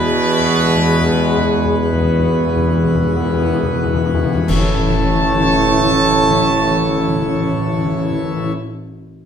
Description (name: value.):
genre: classical, ceremonial fanfare.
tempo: 45-52 BPM.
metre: 4/4.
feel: straight.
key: A major.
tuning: A4 = 440 Hz.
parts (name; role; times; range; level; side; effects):
bright trumpet section; melody; 0.0-8.5 s; B4 to A5; -21 LUFS; equal; none.
mellow French horn section; sustained chords; 0.0-8.5 s; G#3 to F#4; -23 LUFS; left 5 dB; none.
pipe organ, plenum; sustained chords; 0.0-8.5 s; E3 to C#5; -21 LUFS; left 2 dB; none.
warm trombone section; sustained chords; 0.0-8.5 s; B2 to A3; -23 LUFS; right 5 dB; none.
warm tuba; bass; 0.0-8.5 s; A1 to E2; -19 LUFS; right 3 dB; none.
timpani; percussion; 0.0-8.5 s; E2 to A2; -21 LUFS; left 1 dB; none.
clash cymbals and concert bass drum; percussion; 4.5-7.0 s; none; -24 LUFS; left 1 dB; none.
room: wet stone room reverb, RT60 1.0 s.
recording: minimal, uncompressed stereo recording.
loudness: -13 LUFS.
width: side -8 dB against mid.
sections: 0.0-4.5 A section; 4.5-9.3 B section.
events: timpani fill 0.0-4.5; slowing down 0.0-4.5; band accent 4.5-5.8.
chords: 0.0 Eadd9; 4.5 A.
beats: 0.76 1.94 3.18 | 4.49 5.78 7.07 8.35.